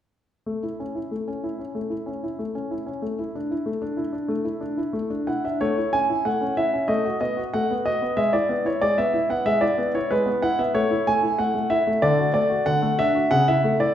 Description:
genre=classical-period piano sonatina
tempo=94 BPM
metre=4/4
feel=straight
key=A major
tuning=A4 = 441 Hz
part: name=warm concert grand piano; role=solo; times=0.5-13.9 s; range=C#3 to G#5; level=-21 LUFS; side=equal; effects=none
room=wet recital hall reverb, RT60 1.6 s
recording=heard from further back in the room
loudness=-21 LUFS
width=side -10 dB against mid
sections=0.5-5.6 A section; 5.6-13.9 B section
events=none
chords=0.5 A; 3.0 Asus4; 5.6 A; 6.9 B5/A; 8.2 E/G#; 10.8 A5; 12.0 D; 13.3 A/C#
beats=| 0.47 1.11 1.76 2.39 | 3.03 3.66 4.29 4.94 | 5.61 6.26 6.90 7.54 | 8.18 8.82 9.47 10.11 | 10.76 11.39 12.03 12.67 | 13.31

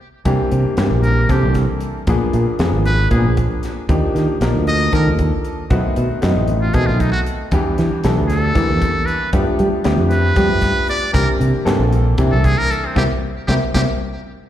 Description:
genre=electric jazz fusion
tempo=231 BPM (eighths)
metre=7/8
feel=straight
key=C mixolydian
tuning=A4 = 440 Hz
part: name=clear grand piano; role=accompaniment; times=0.3-13.8 s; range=D#3 to Bb4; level=-21 LUFS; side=left 2 dB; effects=slapback echo
part: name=fingered electric bass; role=bass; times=0.3-13.8 s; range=Ab1 to G3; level=-16 LUFS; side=equal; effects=none
part: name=crisp fusion drum kit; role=drums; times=0.3-13.9 s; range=hi-hat, kick drum, snare drum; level=-22 LUFS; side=equal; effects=none
part: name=trumpet with metal mute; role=melody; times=1.0-13.8 s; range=C4 to Eb5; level=-22 LUFS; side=equal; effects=slapback echo, tape echo
room=small room ambience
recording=live gig heard through the venue's PA, recital hall reverb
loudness=-14 LUFS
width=side -11 dB against mid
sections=0.3-14.5 A section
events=drum fill 0.0; band accent 0.0, 13.0-14.5; muted trumpet solo 0.3-14.5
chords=0.3 C9; 2.1 Bb7b9; 3.9 Ebmaj9; 5.7 B7b9; 7.5 Em7; 9.3 G9; 11.2 C9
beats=0.00 | 0.26 0.52 0.78 1.04 1.30 1.56 1.82 | 2.08 2.33 2.60 2.85 3.11 3.37 3.63 | 3.89 4.15 4.41 4.67 4.93 5.19 5.45 | 5.71 5.96 6.22 6.48 6.74 7.00 7.26 | 7.52 7.78 8.04 8.30 8.56 8.82 9.08 | 9.34 9.59 9.85 10.11 10.37 10.63 10.89 | 11.15 11.41 11.67 11.93 12.19 12.45 12.71 | 12.96 13.22 13.48 13.74

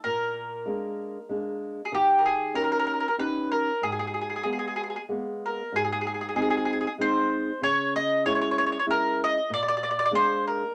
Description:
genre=italian folk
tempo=95 BPM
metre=3/4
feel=straight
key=G# harmonic minor, Ab major from 5.7 s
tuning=A4 = 440 Hz
part: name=mandolin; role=melody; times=0.0-10.7 s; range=G4 to Eb5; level=-27 LUFS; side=equal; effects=none
part: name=flamenco guitar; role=accompaniment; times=0.0-10.6 s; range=G#2 to G4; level=-33 LUFS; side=equal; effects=none
room=wet studio ambience, RT60 0.5 s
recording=none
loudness=-26 LUFS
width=mono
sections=0.0-5.7 A section; 5.7-10.7 B section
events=none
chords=0.1 A#7; 1.9 D#7; 3.8 G#madd9; 5.7 Ab; 7.6 Dbm; 9.5 Bb7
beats=| 0.05 0.68 1.30 | 1.93 2.55 3.18 | 3.81 4.44 5.08 | 5.72 6.35 6.98 | 7.62 8.25 8.88 | 9.51 10.13

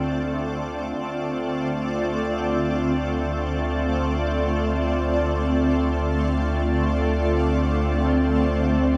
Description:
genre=ambient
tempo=free time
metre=none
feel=none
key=D minor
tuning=A4 = 440 Hz
part: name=shimmering ambient pad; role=sustained chords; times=0.0-9.0 s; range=D3 to D5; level=-25 LUFS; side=equal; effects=chorus, built-in reverb
part: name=warm sub bass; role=bass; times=0.0-9.0 s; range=D2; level=-29 LUFS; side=equal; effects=tube saturation
part: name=bowed-like drone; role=drone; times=2.4-9.0 s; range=D3 to A3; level=-34 LUFS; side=equal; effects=none
room=wet concert hall reverb, RT60 2.1 s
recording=none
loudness=-23 LUFS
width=mono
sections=0.0-9.0 A section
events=none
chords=0.0 Dm7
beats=free time

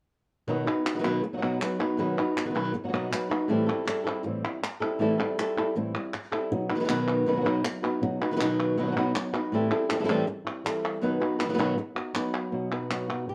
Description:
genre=flamenco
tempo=159 BPM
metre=4/4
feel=straight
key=B phrygian dominant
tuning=A4 = 440 Hz
part: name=flamenco guitar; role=melody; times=0.5-13.3 s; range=A2 to B4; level=-29 LUFS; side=equal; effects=none
part: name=flamenco guitar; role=stabs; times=0.5-13.3 s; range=A2 to F#4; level=-34 LUFS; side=equal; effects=none
part: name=palmas hand claps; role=percussion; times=0.7-13.3 s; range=none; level=-36 LUFS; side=equal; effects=none
room=moderate studio reverb, RT60 0.6 s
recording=worn, warbling old tape, cassette tape, warbly pitch drift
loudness=-28 LUFS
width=mono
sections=0.5-12.5 A section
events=none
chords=0.5 B; 3.5 Am7; 6.5 B; 9.5 Am7; 11.0 B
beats=| 0.48 0.86 1.24 1.61 | 1.99 2.37 2.75 3.12 | 3.50 3.88 4.26 4.63 | 5.01 5.39 5.76 6.14 | 6.52 6.89 7.27 7.64 | 8.02 8.40 8.77 9.15 | 9.53 9.90 10.28 10.65 | 11.03 11.40 11.78 12.15 | 12.53 12.90 13.28

